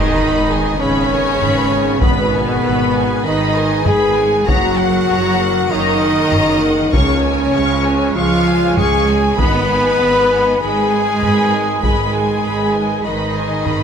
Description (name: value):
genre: cinematic, epic orchestral film score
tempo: 98 BPM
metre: 4/4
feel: straight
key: G# dorian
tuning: A4 = 440 Hz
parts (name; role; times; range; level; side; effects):
- warm symphonic violin section; melody; 0.0-13.8 s; F#5 to C#6; -24 LUFS; left 3 dB; none
- clear symphonic violin section; second line; 0.0-13.8 s; B4 to B5; -25 LUFS; left 4 dB; none
- silver concert flute; second line; 0.0-13.8 s; B4 to B5; -26 LUFS; left 1 dB; none
- warm symphonic viola section; accompaniment; 0.0-13.8 s; F#4 to G#5; -26 LUFS; right 1 dB; none
- clear trombone section; sustained chords; 0.0-13.8 s; C#3 to B3; -27 LUFS; right 1 dB; none
- mellow French horn section; sustained chords; 0.0-13.8 s; B3 to B4; -19 LUFS; left 2 dB; none
- dark trumpet; stabs; 0.0-13.8 s; B3 to B4; -21 LUFS; right 1 dB; none
- rich symphonic cello section; bass; 0.0-13.8 s; B2 to B3; -20 LUFS; right 2 dB; none
- rich symphonic double bass section; bass; 0.0-13.8 s; F#1 to C#2; -22 LUFS; right 3 dB; none
- timpani; percussion; 0.0-0.5, 9.4-10.3 s; G#2; -29 LUFS; left 2 dB; none
- impact; sound effects; 0.2-2.0 s; none; barely audible; none; none
- taiko ensemble; drums; 1.4-13.8 s; none; -19 LUFS; equal; none
room: moderate scoring stage reverb, RT60 1.6 s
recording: none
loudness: -13 LUFS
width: side -7 dB against mid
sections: 0.0-13.8 A section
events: impact 0.0-2.0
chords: 0.0 G#m; 4.5 F#; 6.9 C#; 9.4 G#m